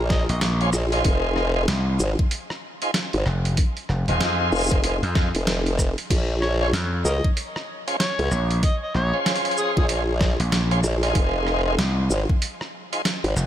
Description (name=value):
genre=glitch hop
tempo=95 BPM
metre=4/4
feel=swing 61% on 16ths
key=Bb minor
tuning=A4 = 440 Hz
part: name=formant-sweep wobble bass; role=bass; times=0.0-13.3 s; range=F1 to Db2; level=-22 LUFS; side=equal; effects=chorus, tube saturation
part: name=overdriven harmonica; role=melody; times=0.1-0.4, 6.4-9.9 s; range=Ab4 to Eb5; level=-30 LUFS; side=equal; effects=diffuse ambient delay
part: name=boom bap sampler-style drum kit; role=drums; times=0.1-13.5 s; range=crash cymbal, hi-hat, rim click, shaker, snare drum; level=-28 LUFS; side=right 1 dB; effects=none
part: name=electronic kick drum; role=drums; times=0.1-12.4 s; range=none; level=-21 LUFS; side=equal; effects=overdrive
part: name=gritty slap bass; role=bass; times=0.3-13.5 s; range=Eb1 to F2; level=-22 LUFS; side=equal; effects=overdrive
part: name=tonewheel organ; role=stabs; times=0.6-13.0 s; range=Db4 to C5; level=-28 LUFS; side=equal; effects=fast rotary speaker, vintage 12-bit sampler grit, sidechain pumping, diffuse ambient delay
room=light reverb, digital ambience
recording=none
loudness=-20 LUFS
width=side -11 dB against mid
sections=0.0-13.5 A section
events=none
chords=0.0 Bbm7; 1.1 Fm7; 6.1 Bbm7; 11.2 Fm7